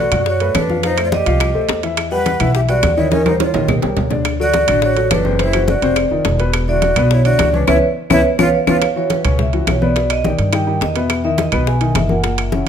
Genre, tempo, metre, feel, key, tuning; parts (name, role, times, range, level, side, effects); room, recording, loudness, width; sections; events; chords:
Afro-Cuban jazz; 210 BPM; 4/4; straight; A4 = 440 Hz
vibraphone with medium mallets; melody; 0.0-12.4 s; A#4 to G#5; -18 LUFS; right 2 dB; tape echo
breathy jazz flute; second line; 0.0-8.8 s; C#4 to B4; -23 LUFS; left 2 dB
dark baby grand piano; accompaniment; 0.0-12.7 s; A#2 to F#5; -21 LUFS; left 4 dB
upright bass; bass; 0.0-12.7 s; E1 to G2; -19 LUFS; equal
claves; percussion; 0.1-12.5 s; -26 LUFS; left 4 dB
congas; percussion; 0.1-12.7 s; -22 LUFS; left 1 dB
timbales; percussion; 0.1-12.7 s; -24 LUFS; right 10 dB
bongos; percussion; 0.3-12.7 s; -25 LUFS; left 10 dB
light reverb; close, detailed microphones; -13 LUFS; side -8 dB against mid
0.0-8.8 A section; 8.8-12.7 B section
drum fill 3.1-4.3, 8.2-8.8; band accent 7.7-8.8; vibraphone solo 8.8-12.7
0.0 Bm9; 0.8 F9; 2.0 Em9; 3.1 D#9; 4.3 Dmaj7; 5.4 D9; 6.0 F5; 6.5 Esus2; 7.7 C#m7; 8.2 C#7; 8.8 F#5; 10.0 Baug; 11.1 Emaj9